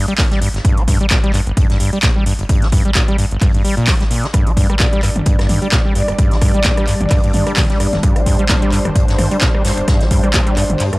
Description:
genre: acid house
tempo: 130 BPM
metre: 4/4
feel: swing 56% on 16ths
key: G minor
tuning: A4 = 441 Hz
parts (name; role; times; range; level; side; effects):
- overdriven acid bass; riff; 0.0-11.0 s; G1 to G3; -18 LUFS; equal; analog chorus, cassette tape
- electro analog drum machine; drums; 0.1-11.0 s; handclaps, hi-hat, rim click, toms; -20 LUFS; equal; overdrive
- soft-mallet drum kit; drums; 0.1-10.9 s; hi-hat, snare drum; -30 LUFS; left 1 dB; high-pass filter on hats, high-pass filter on snare, high-pass filter on room
- electronic kick drum; drums; 0.2-10.4 s; none; -15 LUFS; equal; none
- lush unison pad; sustained chords; 4.3-11.0 s; G3 to D5; -21 LUFS; equal; chorus, sidechain pumping
room: small room ambience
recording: transformer saturation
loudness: -12 LUFS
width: side -22 dB against mid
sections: 0.0-11.0 A section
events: kick drops out 10.8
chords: 0.0 G5

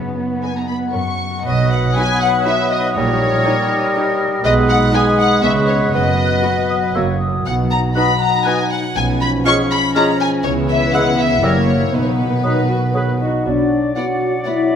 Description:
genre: cinematic, playful, whimsical film cue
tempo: 120 BPM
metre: 3/4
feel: straight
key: B major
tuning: A4 = 439 Hz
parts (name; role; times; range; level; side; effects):
- concert harp; arpeggios; 0.0-14.8 s; F#2 to G#5; -23 LUFS; left 6 dB; none
- dark chamber cello section; bass; 0.0-13.9 s; F#2 to B3; -24 LUFS; right 4 dB; none
- warm chamber double bass section; bass; 0.0-13.9 s; F#1 to F#2; -22 LUFS; right 3 dB; none
- dark studio violin section; melody; 0.4-14.5 s; B4 to C#6; -21 LUFS; left 4 dB; none
- warm chamber violin section; second line; 0.4-14.5 s; B4 to C#6; -26 LUFS; left 1 dB; none
- dark studio viola section; accompaniment; 0.4-14.5 s; A#3 to B4; -25 LUFS; right 1 dB; none
- warm oboe; second line; 1.4-14.8 s; A#4 to D#5; -25 LUFS; right 1 dB; none
- mellow hollow concert flute; second line; 1.5-14.8 s; D5 to F#6; -25 LUFS; equal; none
- warm bassoon; accompaniment; 1.5-14.8 s; F#3 to B3; -22 LUFS; equal; none
- dark French horn section; sustained chords; 1.5-14.8 s; D#3 to F#4; -22 LUFS; left 1 dB; none
room: wet scoring stage reverb, RT60 1.9 s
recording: none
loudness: -14 LUFS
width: side -8 dB against mid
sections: 0.0-1.5 A section; 1.5-13.5 B section; 13.5-14.8 C section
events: none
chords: 0.0 B/F#; 0.9 F#; 1.5 B; 3.0 D#7/A#; 4.4 G#m/B; 5.4 C#m7; 5.9 B/F#; 6.9 F#; 7.5 B; 9.0 C#7/B; 10.4 C#m7; 11.4 F#7b9; 11.9 B; 13.5 Bm

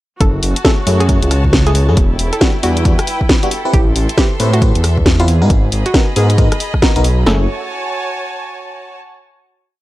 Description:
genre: UK garage, two-step garage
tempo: 136 BPM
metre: 4/4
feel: swing 62% on 16ths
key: F# dorian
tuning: A4 = 439 Hz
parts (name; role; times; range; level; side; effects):
- hollow square pluck; melody; 0.2-7.4 s; E#4 to A4; -23 LUFS; right 1 dB; chorus, tape echo
- dark detuned saw bass; bass; 0.2-7.5 s; E1 to A2; -13 LUFS; equal; none
- garage drum kit; drums; 0.2-7.2 s; hi-hat, rim click, snare drum; -16 LUFS; equal; none
- punchy analog drum machine; drums; 0.2-7.4 s; kick drum, snare drum; -14 LUFS; equal; overdrive
- clear studio string section; texture; 0.2-9.0 s; E4 to C6; -24 LUFS; equal; sidechain pumping
- FM electric piano; stabs; 0.6-7.4 s; G3 to B4; -22 LUFS; left 1 dB; chorus, phaser, analog delay
room: little or no reverb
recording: dry, gritty hardware recording, transformer saturation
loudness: -11 LUFS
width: side -16 dB against mid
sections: 0.2-7.3 groove; 7.3-9.0 final chord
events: none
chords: 0.2 F#m7; 2.0 Em7; 3.5 Am7; 5.3 G#m7; 7.3 F#m

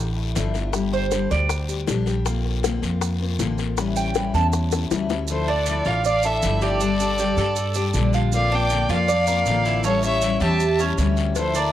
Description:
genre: latin, Cuban son and guajira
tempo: 158 BPM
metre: 4/4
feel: straight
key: D minor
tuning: A4 = 440 Hz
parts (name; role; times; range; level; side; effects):
- picked steel-string acoustic guitar; accompaniment; 0.0-11.7 s; D3 to G4; -26 LUFS; left 7 dB; none
- Cuban tres; arpeggios; 0.0-1.5, 4.0-11.7 s; C#4 to A5; -26 LUFS; right 6 dB; none
- upright bass; bass; 0.0-11.7 s; G1 to G2; -24 LUFS; equal; none
- bongos and cowbell; percussion; 0.4-5.2, 11.4-11.6 s; none; -29 LUFS; left 10 dB; none
- guiro; percussion; 0.4-11.7 s; none; -36 LUFS; left 9 dB; none
- maracas; percussion; 0.4-11.7 s; none; -34 LUFS; right 9 dB; none
- warm violin; melody; 5.3-11.7 s; C5 to A5; -25 LUFS; right 1 dB; cassette tape
- rich fiddle; second line; 5.3-11.7 s; A4 to E5; -28 LUFS; left 5 dB; none
room: moderate spring reverb, RT60 2.6 s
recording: home recording on cassette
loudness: -19 LUFS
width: side -12 dB against mid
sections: 0.0-5.3 A section; 5.3-11.7 B section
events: Cuban tres solo 0.0-5.3; drum fill 4.5-5.3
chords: 0.0 Dmadd9; 0.7 G5; 2.3 Bbadd9; 3.8 A7; 5.3 Dmadd9; 6.8 Gsus2; 8.3 Bbadd9; 9.8 A7

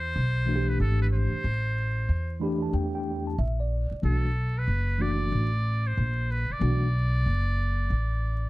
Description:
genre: hip hop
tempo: 93 BPM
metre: 4/4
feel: swing 65% on 16ths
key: A dorian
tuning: A4 = 440 Hz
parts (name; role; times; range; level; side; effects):
- trumpet with metal mute; melody; 0.0-8.5 s; A4 to D5; -32 LUFS; right 1 dB; slapback echo
- upright bass; bass; 0.0-8.5 s; F#1 to E2; -26 LUFS; equal; none
- mellow tine electric piano; accompaniment; 0.5-6.9 s; E3 to B5; -30 LUFS; equal; medium stereo tremolo
room: little or no reverb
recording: dark, warm production, vinyl crackle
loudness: -24 LUFS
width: side -19 dB against mid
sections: 0.0-8.5 A section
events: tine electric piano fill 2.1-4.0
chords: 0.0 Am9; 4.0 Bm7

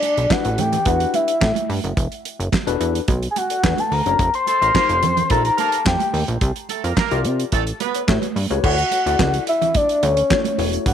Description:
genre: early-eighties boogie funk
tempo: 108 BPM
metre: 4/4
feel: straight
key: unclear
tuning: A4 = 440 Hz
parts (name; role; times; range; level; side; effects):
- soft octave-layered synth lead; melody; 0.0-10.9 s; C#5 to C6; -19 LUFS; left 2 dB; chorus, tremolo, tape echo
- damped 70s drum kit; drums; 0.0-10.9 s; crash cymbal, handclaps, hi-hat, kick drum, snare drum; -22 LUFS; right 1 dB; none
- congas; percussion; 0.0-10.6 s; none; -29 LUFS; right 15 dB; none
- plucky analog bass; bass; 0.2-10.9 s; E1 to C3; -22 LUFS; equal; none
- tine electric piano; accompaniment; 0.3-10.9 s; D4 to D5; -26 LUFS; left 14 dB; medium stereo tremolo
- clear horn section; second line; 4.5-8.0 s; A3 to B4; -26 LUFS; right 11 dB; none
room: moderate spring reverb, RT60 1.6 s, studio reverb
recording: 1960s-style stereo with parts hard left and right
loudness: -17 LUFS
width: side -9 dB against mid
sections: 0.0-8.6 A section; 8.6-10.9 B section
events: none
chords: 0.0 A9sus4; 2.0 E9sus4; 4.2 F9sus4; 6.4 C9sus4; 7.5 A13; 8.6 Dmaj9

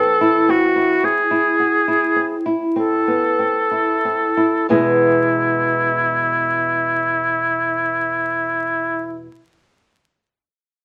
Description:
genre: romantic duo for oboe and classical guitar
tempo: 30-37 BPM (dotted quarters)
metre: 12/8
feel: rubato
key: E major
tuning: A4 = 440 Hz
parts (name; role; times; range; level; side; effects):
- warm oboe; melody; 0.0-9.3 s; E4 to A4; -20 LUFS; equal; none
- nylon-string guitar; accompaniment; 0.0-9.3 s; E2 to G#4; -22 LUFS; equal; none
room: moderate studio reverb, RT60 0.9 s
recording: vinyl crackle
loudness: -18 LUFS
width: mono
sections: 0.0-4.7 A section; 4.7-10.8 B section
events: slowing down 0.0-4.7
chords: 0.0 Am/E; 4.7 E

